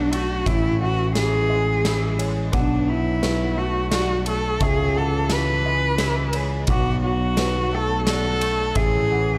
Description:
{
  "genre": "post-rock",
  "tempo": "87 BPM",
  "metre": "3/4",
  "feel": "straight",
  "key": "unclear",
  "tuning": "A4 = 440 Hz",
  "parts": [
    { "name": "rich cello", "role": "melody", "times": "0.0-9.4 s", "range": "D4 to B4", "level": "-25 LUFS", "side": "equal", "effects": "tape echo" },
    { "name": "pedal steel guitar", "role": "sustained chords", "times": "0.0-9.4 s", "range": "B4 to E6", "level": "-43 LUFS", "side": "equal", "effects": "none" },
    { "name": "felt-muted upright piano", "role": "arpeggios", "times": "0.0-9.4 s", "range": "B4 to F#5", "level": "-38 LUFS", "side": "equal", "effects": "tape echo" },
    { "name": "twangy electric guitar", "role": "arpeggios", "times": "0.0-9.4 s", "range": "A2 to F#4", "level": "-33 LUFS", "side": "equal", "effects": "ensemble chorus, tape echo" },
    { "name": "growling picked electric bass", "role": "bass", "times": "0.0-9.4 s", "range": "A1 to C#2", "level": "-26 LUFS", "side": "equal", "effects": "overdrive" },
    { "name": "big rock drum kit", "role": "drums", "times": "0.1-8.9 s", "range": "kick drum, ride cymbal, snare drum", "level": "-29 LUFS", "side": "equal", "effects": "none" }
  ],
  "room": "small room ambience",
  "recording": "dark, warm production",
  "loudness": "-21 LUFS",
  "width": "mono",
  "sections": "0.0-9.4 A section",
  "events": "none",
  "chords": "0.5 Amaj7; 2.5 Bm7; 4.6 C#m7; 6.7 Bm7; 8.8 Amaj7"
}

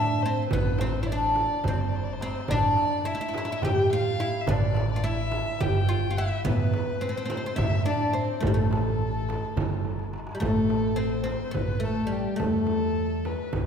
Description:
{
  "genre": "Turkish makam ensemble",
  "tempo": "212 BPM (eighths)",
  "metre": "7/8",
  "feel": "straight",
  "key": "A makam nihavent",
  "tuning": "A4 = 440 Hz",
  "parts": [
    { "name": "oud", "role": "melody", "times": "0.0-13.5 s", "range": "G3 to G4", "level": "-28 LUFS", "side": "left 1 dB", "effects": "none" },
    { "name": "dark violin", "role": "second line", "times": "0.0-13.5 s", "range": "G4 to G5", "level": "-33 LUFS", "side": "left 3 dB", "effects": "none" },
    { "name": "upright bass", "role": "bass", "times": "0.0-13.7 s", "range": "G1 to A2", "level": "-30 LUFS", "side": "right 1 dB", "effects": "none" },
    { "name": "darbuka", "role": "percussion", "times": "0.2-13.7 s", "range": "none", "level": "-31 LUFS", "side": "right 2 dB", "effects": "none" },
    { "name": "frame drum", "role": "percussion", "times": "0.5-13.7 s", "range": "none", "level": "-34 LUFS", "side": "right 4 dB", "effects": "none" }
  ],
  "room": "wet concert hall reverb, RT60 1.9 s",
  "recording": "recorded in a church or concert hall",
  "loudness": "-24 LUFS",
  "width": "side -7 dB against mid",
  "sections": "0.0-10.4 A section; 10.4-13.7 B section",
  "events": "drum fill 1.9-2.5, 9.8-10.4",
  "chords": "none"
}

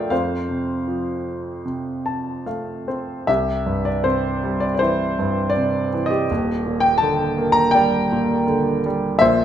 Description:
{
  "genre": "classical, lyrical solo piano",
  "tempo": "71-84 BPM",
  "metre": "4/4",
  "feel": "rubato",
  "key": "unclear",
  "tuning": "A4 = 441 Hz",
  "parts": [
    { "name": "warm concert grand piano", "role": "solo", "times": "0.0-9.4 s", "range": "Eb1 to Bb5", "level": "-18 LUFS", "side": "equal", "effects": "none" }
  ],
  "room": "moderate recital hall reverb, RT60 1.4 s",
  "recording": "minimal, uncompressed stereo recording",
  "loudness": "-18 LUFS",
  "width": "side -10 dB against mid",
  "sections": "0.0-3.3 A section; 3.3-9.4 B section",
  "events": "grand piano fill 1.7-3.3",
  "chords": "0.1 F; 3.3 C; 6.3 Ebmaj7"
}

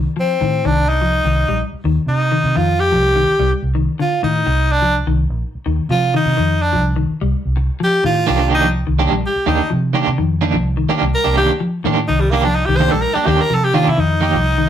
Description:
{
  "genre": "afrobeat",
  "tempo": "126 BPM",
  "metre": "4/4",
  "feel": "straight",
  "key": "C dorian",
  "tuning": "A4 = 440 Hz",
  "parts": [
    { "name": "semi-hollow electric guitar", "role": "arpeggios", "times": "0.0-14.7 s", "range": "D3 to G3", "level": "-21 LUFS", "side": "left 4 dB", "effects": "spring reverb" },
    { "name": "vintage muted fingered electric bass", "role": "bass", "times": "0.0-14.7 s", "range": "Bb1 to C3", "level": "-18 LUFS", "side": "equal", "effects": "none" },
    { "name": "raspy tenor saxophone", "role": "melody", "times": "0.2-14.7 s", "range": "G3 to C5", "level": "-17 LUFS", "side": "equal", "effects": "slapback echo" },
    { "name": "electric guitar at the edge of break-up", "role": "stabs", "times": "8.3-14.4 s", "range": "Eb3 to G4", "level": "-18 LUFS", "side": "right 5 dB", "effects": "tremolo" }
  ],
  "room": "moderate studio reverb, RT60 0.5 s",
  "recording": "rough rehearsal-room recording",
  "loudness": "-14 LUFS",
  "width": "side -10 dB against mid",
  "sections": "0.0-14.7 A section",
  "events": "tenor saxophone solo 0.0-14.7",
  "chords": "0.0 Cm9"
}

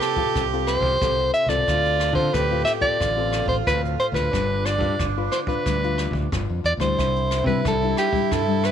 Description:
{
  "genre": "samba and choro",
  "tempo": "90 BPM",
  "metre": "4/4",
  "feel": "straight",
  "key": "C major",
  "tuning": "A4 = 440 Hz",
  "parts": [
    { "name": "breathy soprano saxophone", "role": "melody", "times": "0.0-8.7 s", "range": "G4 to E5", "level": "-23 LUFS", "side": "equal", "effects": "none" },
    { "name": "clear tenor saxophone", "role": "second line", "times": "0.0-8.7 s", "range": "D4 to G4", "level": "-28 LUFS", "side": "right 13 dB", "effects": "none" },
    { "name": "nylon-string guitar", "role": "accompaniment", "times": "0.0-8.7 s", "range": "A2 to B4", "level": "-28 LUFS", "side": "left 13 dB", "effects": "none" },
    { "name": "jazz brush drum kit", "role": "drums", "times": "0.0-8.7 s", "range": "hi-hat, kick drum, rim click", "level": "-29 LUFS", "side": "equal", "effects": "none" },
    { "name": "modern bright fingered electric bass", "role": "bass", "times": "0.4-8.7 s", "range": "G1 to D3", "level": "-26 LUFS", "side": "equal", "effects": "none" }
  ],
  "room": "light reverb",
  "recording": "1960s-style stereo with parts hard left and right",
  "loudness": "-19 LUFS",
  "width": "side -9 dB against mid",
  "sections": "0.0-8.7 A section",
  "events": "none",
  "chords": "0.0 F/C; 1.7 Dm7; 4.3 G7; 7.0 Cadd9"
}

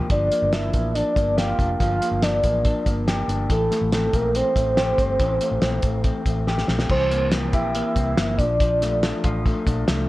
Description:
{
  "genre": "jangly indie pop",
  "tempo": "141 BPM",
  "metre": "4/4",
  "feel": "straight",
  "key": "unclear",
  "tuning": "A4 = 444 Hz",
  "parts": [
    { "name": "electric guitar through a small old amp", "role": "arpeggios", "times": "0.0-10.1 s", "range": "E3 to G4", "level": "-26 LUFS", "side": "left 2 dB", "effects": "none" },
    { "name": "cloth-damped thuddy drum kit", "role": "drums", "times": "0.0-10.0 s", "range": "crash cymbal, hi-hat, kick drum, snare drum, toms", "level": "-24 LUFS", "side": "equal", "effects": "none" },
    { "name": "soft octave-layered synth lead", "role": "melody", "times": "0.1-9.0 s", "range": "A4 to F5", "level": "-23 LUFS", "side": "right 1 dB", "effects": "chorus, tremolo" },
    { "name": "vintage muted fingered electric bass", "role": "bass", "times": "0.1-10.1 s", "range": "F1 to C2", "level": "-26 LUFS", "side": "equal", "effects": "none" }
  ],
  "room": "moderate large studio reverb, RT60 1.1 s, small room ambience",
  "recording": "worn, warbling old tape, cassette tape, warbly pitch drift",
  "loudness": "-19 LUFS",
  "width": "side -18 dB against mid",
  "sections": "0.0-6.9 A section; 6.9-10.1 B section",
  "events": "drum fill 6.5-6.9",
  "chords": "0.0 Gm7; 3.5 Am7; 6.9 C7; 8.4 Bbmaj7"
}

